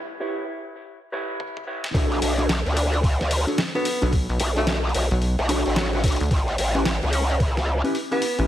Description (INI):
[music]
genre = glitch hop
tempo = 110 BPM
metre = 4/4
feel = swing 62% on 16ths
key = B minor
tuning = A4 = 439 Hz
[part]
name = mellow electric guitar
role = stabs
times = 0.2-8.5 s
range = C#4 to C#5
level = -28 LUFS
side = equal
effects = sidechain pumping, ping-pong delay
[part]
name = boom bap sampler-style drum kit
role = drums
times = 1.4-8.5 s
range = hi-hat, snare drum, toms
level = -28 LUFS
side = left 1 dB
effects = none
[part]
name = growl bass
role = bass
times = 1.9-7.8 s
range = A1 to D2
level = -22 LUFS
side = equal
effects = chorus, overdrive, high-pass filter
[part]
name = electronic kick drum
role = drums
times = 1.9-7.5 s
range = none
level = -22 LUFS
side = equal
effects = high-pass filter on kick
[part]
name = warm tenor saxophone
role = melody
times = 2.8-8.5 s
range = F#3 to D4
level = -29 LUFS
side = equal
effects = ping-pong delay
[part]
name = rubbery square bass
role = bass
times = 4.0-8.5 s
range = A1 to D2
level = -22 LUFS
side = equal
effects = none
[sound]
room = light reverb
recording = heavily compressed radio sound, high-pass filter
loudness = -20 LUFS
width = side -12 dB against mid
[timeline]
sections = 0.0-1.9 A section; 1.9-8.5 B section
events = break 0.0-1.9; build-up 0.0-1.9; filter sweep on clean electric guitar 0.0-1.9; filter sweep 0.0-1.9; drum fill 1.4-1.9; drop 1.9-8.5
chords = 0.0 A7 (rootless); 1.9 Bm7; 6.3 A7